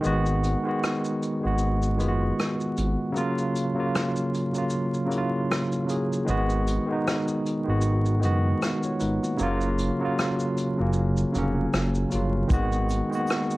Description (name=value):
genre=lo-fi hip hop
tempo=77 BPM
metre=4/4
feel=swing 58% on 16ths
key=G# dorian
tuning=A4 = 439 Hz
part: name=barky tine electric piano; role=accompaniment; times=0.0-13.6 s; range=C#3 to C#5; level=-25 LUFS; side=equal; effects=medium stereo tremolo, cassette tape
part: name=vintage brush drum kit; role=drums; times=0.0-13.6 s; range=hi-hat, kick drum, rim click, shaker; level=-30 LUFS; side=equal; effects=vintage 12-bit sampler grit
part: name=smooth synth bass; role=bass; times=0.1-13.0 s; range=E#1 to G#1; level=-26 LUFS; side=equal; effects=none
part: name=tube shaker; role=percussion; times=12.5-13.5 s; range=none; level=-51 LUFS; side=left 3 dB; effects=none
room=moderate small room reverb, RT60 0.5 s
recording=dark, warm production, vinyl crackle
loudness=-23 LUFS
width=side -19 dB against mid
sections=0.0-13.6 A section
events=break 0.0-12.5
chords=0.0 G#m7; 3.2 F#maj7; 6.3 G#m7; 9.4 F#maj7; 12.5 G#m7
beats=| 0.04 0.82 1.60 2.38 | 3.16 3.94 4.71 5.49 | 6.27 7.05 7.83 8.61 | 9.39 10.17 10.95 11.73 | 12.51 13.29